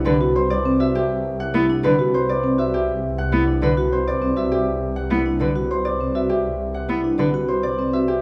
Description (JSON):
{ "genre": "classical, minimalist pattern music", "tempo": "101 BPM", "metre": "3/4", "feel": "straight", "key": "C lydian", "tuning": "A4 = 443 Hz", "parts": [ { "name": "Celtic harp", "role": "melody", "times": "0.0-8.2 s", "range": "G4 to F#5", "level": "-25 LUFS", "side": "equal", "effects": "none" }, { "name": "vibraphone with medium mallets", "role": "arpeggios", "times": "0.0-8.1 s", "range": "C4 to F#4", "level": "-24 LUFS", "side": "equal", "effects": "none" }, { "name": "rich symphonic double bass section", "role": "bass", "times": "0.0-8.2 s", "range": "C2", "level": "-28 LUFS", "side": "equal", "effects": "none" }, { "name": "warm cello", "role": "accompaniment", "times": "0.1-7.3 s", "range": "D3 to B3", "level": "-26 LUFS", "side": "equal", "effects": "none" } ], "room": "wet large studio reverb, RT60 1.4 s", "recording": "none", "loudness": "-21 LUFS", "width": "mono", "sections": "0.0-8.2 A section", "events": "none", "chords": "0.0 Cmaj9" }